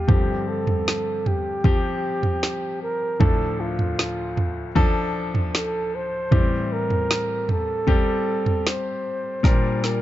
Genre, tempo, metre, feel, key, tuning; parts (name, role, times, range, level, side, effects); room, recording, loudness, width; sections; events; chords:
pop ballad; 77 BPM; 4/4; straight; A phrygian; A4 = 442 Hz
breathy flugelhorn; melody; 0.0-10.0 s; F4 to C5; -26 LUFS; right 2 dB
clear baby grand piano; accompaniment; 0.0-10.0 s; D2 to Bb4; -26 LUFS; left 3 dB
deep house drum kit; drums; 0.1-10.0 s; kick drum, snare drum, toms; -20 LUFS; right 1 dB
small room ambience; dark, warm production, nothing above 7.7 kHz; -20 LUFS; side -14 dB against mid
0.0-10.0 A section
drum fill 9.4-10.0
0.1 G7sus4; 3.2 Dm; 6.3 Am7; 9.4 Bb6